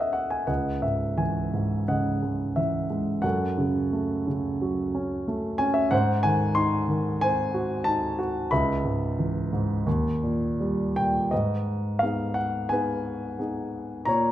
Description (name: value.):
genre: classical, lyrical solo piano.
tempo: 80-94 BPM.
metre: 4/4.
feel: rubato.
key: C# minor, G# dorian from 11.3 s.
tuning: A4 = 440 Hz.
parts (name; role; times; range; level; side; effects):
dark grand piano; solo; 0.0-14.3 s; C#2 to B#5; -24 LUFS; equal; none.
room: moderate recital hall reverb, RT60 1.5 s.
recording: minimal, uncompressed stereo recording.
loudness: -24 LUFS.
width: side -12 dB against mid.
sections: 0.5-11.3 A section; 11.3-14.3 B section.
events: none.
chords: 0.5 C#madd9; 3.2 F#m; 5.9 G#7; 8.5 C#m7; 9.9 D#; 11.3 G#m.